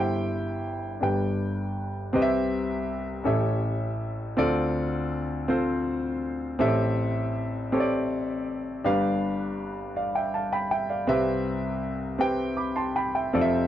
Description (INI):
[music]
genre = gospel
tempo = 54 BPM (dotted quarters)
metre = 6/8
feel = straight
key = C major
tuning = A4 = 441 Hz
[part]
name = warm grand piano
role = solo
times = 0.0-13.7 s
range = F1 to D6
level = -24 LUFS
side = equal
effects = none
[sound]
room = light reverb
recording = dry, close 1970s-style studio recording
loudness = -25 LUFS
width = side -11 dB against mid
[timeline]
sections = 0.0-2.1 A section; 2.1-13.7 B section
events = none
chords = 0.0 C/G; 1.0 G; 2.1 Cmaj7; 3.3 A7; 4.4 Dm7; 6.6 Am7; 8.8 G7; 11.1 Cmaj7